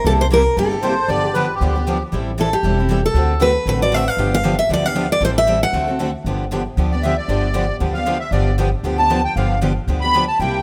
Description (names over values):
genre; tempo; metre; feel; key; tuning
acoustic string swing (jazz manouche); 232 BPM; 4/4; swing 56% on 8ths; G mixolydian; A4 = 441 Hz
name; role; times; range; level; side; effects
picked steel-string acoustic guitar; melody; 0.0-6.1 s; G4 to F#5; -20 LUFS; equal; none
upright bass; bass; 0.0-10.6 s; E1 to D2; -23 LUFS; equal; none
picked steel-string acoustic guitar; accompaniment; 0.1-10.6 s; C3 to A4; -26 LUFS; equal; none
picked steel-string acoustic guitar; accompaniment; 0.1-10.6 s; C3 to A4; -28 LUFS; equal; none
accordion; second line; 0.8-2.0, 6.9-10.6 s; G4 to B5; -22 LUFS; equal; light tremolo tuning
room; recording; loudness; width
light reverb, small room ambience; rough home demo mix; -18 LUFS; mono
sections
0.0-6.3 A section; 6.3-10.6 B section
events
accordion solo 6.3-10.6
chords
0.0 C7; 1.1 G7; 2.1 Am7; 3.2 D7; 4.2 G7; 5.2 Am7; 5.7 D7; 6.3 G7